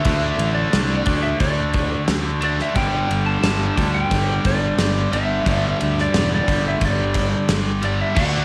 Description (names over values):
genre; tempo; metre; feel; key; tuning
hard rock; 89 BPM; 4/4; straight; unclear; A4 = 440 Hz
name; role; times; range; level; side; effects
lightly driven lead guitar; melody; 0.0-8.4 s; D5 to A5; -27 LUFS; equal; cassette tape, tape echo
cranked stack guitar; riff; 0.0-8.4 s; G2 to D4; -28 LUFS; equal; overdrive
scooped high-gain guitar; riff; 0.0-8.4 s; G2 to D4; -27 LUFS; equal; distortion
gated 80s drum kit; drums; 0.0-8.3 s; crash cymbal, kick drum, ride cymbal, snare drum; -26 LUFS; equal; cassette tape
fuzz fingered electric bass; bass; 0.1-8.4 s; E1 to D2; -26 LUFS; equal; overdrive
scooped high-gain guitar; riff; 8.2-8.4 s; D3 to D4; -30 LUFS; equal; distortion
room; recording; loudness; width
studio reverb; home recording on cassette; -20 LUFS; mono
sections
0.0-8.4 A section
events
none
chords
0.0 D5; 2.8 G5